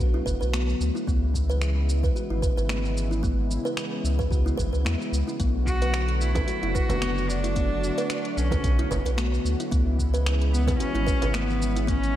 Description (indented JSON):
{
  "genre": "organic downtempo",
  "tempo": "111 BPM",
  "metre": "4/4",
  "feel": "swing 56% on 16ths",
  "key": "unclear",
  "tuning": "A4 = 439 Hz",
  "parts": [
    { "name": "warm analog pad", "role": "sustained chords", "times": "0.0-12.2 s", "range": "C#3 to F#4", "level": "-32 LUFS", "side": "left 1 dB", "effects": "chorus, vintage 12-bit sampler grit, sidechain pumping" },
    { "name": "kalimba", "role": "arpeggios", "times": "0.0-12.0 s", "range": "B3 to B4", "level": "-31 LUFS", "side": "equal", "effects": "tape echo" },
    { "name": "warm sub bass", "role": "bass", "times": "0.0-12.2 s", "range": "F#1 to E2", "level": "-25 LUFS", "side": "equal", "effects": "none" },
    { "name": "organic electronic drum kit", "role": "drums", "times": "0.0-12.1 s", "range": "finger snaps, hi-hat, shaker", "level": "-35 LUFS", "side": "equal", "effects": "small room ambience" },
    { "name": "electronic kick drum", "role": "drums", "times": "0.3-12.0 s", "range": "none", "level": "-27 LUFS", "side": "equal", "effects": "small room ambience" },
    { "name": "clear cello", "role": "melody", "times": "5.7-12.2 s", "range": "B3 to F#4", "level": "-30 LUFS", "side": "equal", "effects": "diffuse ambient delay" },
    { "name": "frame drum", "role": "percussion", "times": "6.3-11.3 s", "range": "none", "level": "-35 LUFS", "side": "right 3 dB", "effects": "none" }
  ],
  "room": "light reverb, studio ambience",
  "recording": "none",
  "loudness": "-22 LUFS",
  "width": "side -12 dB against mid",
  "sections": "0.0-12.2 A section",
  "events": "none",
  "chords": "0.0 Bm7; 1.1 C#m7; 5.4 Bm7; 9.7 C#m7",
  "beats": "0.53 | 1.07 1.61 2.15 2.69 | 3.23 3.78 4.32 4.86 | 5.40 5.94 6.48 7.02 | 7.56 8.10 8.64 9.18 | 9.72 10.26 10.80 11.34 | 11.88"
}